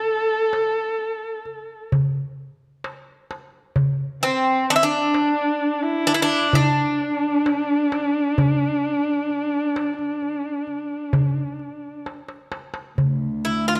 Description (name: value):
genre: Turkish makam ensemble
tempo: 130 BPM (eighths)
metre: 10/8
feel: straight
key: unclear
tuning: A4 = 441 Hz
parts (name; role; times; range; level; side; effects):
- Greek bouzouki; melody; 0.0-13.8 s; C4 to A4; -24 LUFS; equal; none
- warm kamancheh; second line; 0.0-12.1 s; C4 to A4; -25 LUFS; equal; none
- darbuka; percussion; 0.5-13.2 s; none; -24 LUFS; equal; none
- dark cello; drone; 13.0-13.8 s; D2; -28 LUFS; equal; none
room: wet recital hall reverb, RT60 1.3 s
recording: none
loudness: -22 LUFS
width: mono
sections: 0.0-13.0 A section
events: drum fill 12.1-13.0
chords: none